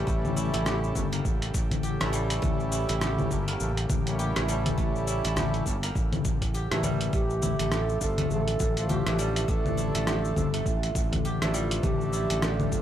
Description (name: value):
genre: organic downtempo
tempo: 102 BPM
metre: 4/4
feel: swing 59% on 16ths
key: A phrygian dominant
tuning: A4 = 440 Hz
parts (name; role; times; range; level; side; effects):
- hand-pumped harmonium; accompaniment; 0.0-12.8 s; F3 to C#5; -36 LUFS; equal; sidechain pumping, analog delay, shimmer reverb
- airy breathy pad; sustained chords; 0.0-12.8 s; C#3 to A4; -38 LUFS; equal; none
- guzheng; arpeggios; 0.0-12.8 s; E3 to G4; -34 LUFS; right 3 dB; analog delay, shimmer reverb
- sustaining fretless electric bass; bass; 0.0-12.8 s; G1 to A1; -29 LUFS; equal; lush chorus
- quartz singing bowl; texture; 0.0-12.8 s; none; barely audible; none; none
- dusty soul sampler-style drum kit; drums; 0.1-12.8 s; congas, hi-hat, rim click, shaker; -30 LUFS; left 3 dB; overdrive
- electronic kick drum; drums; 0.1-12.8 s; none; -29 LUFS; equal; overdrive
- hollow low Native American-style wooden flute; melody; 7.1-12.8 s; F4 to Bb4; -32 LUFS; right 1 dB; analog delay, shimmer reverb
room: light reverb, small room reverb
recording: dry, gritty hardware recording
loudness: -24 LUFS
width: side -10 dB against mid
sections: 0.0-12.8 A section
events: none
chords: 0.0 A7b9; 7.1 Dm